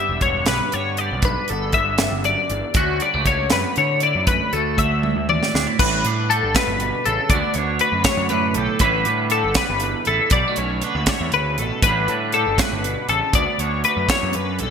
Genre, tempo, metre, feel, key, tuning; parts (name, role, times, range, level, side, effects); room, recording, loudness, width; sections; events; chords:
math rock and midwest emo; 79 BPM (dotted quarters); 6/8; straight; D major; A4 = 440 Hz
twangy electric guitar; accompaniment; 0.0-14.7 s; D2 to G4; -25 LUFS; right 8 dB; wide subtle chorus
twelve-string electric guitar; arpeggios; 0.0-14.7 s; F#4 to E5; -20 LUFS; left 5 dB; analog chorus
fuzz picked electric bass; bass; 0.1-14.7 s; E1 to D3; -25 LUFS; equal; overdrive
crisp fusion drum kit; drums; 0.2-14.7 s; crash cymbal, hi-hat, kick drum, snare drum, toms; -22 LUFS; right 1 dB; gated reverb
moderate lush hall reverb, RT60 2.5 s; bright 1980s-style digital production; -17 LUFS; side -7 dB against mid
0.0-5.8 A section; 5.8-14.7 B section
drum fill 5.0-5.8
0.0 G6; 2.8 Dmaj7; 5.8 A7sus4; 7.3 D6; 8.8 A7sus4; 10.3 Bm11; 11.8 A7sus4; 13.3 D6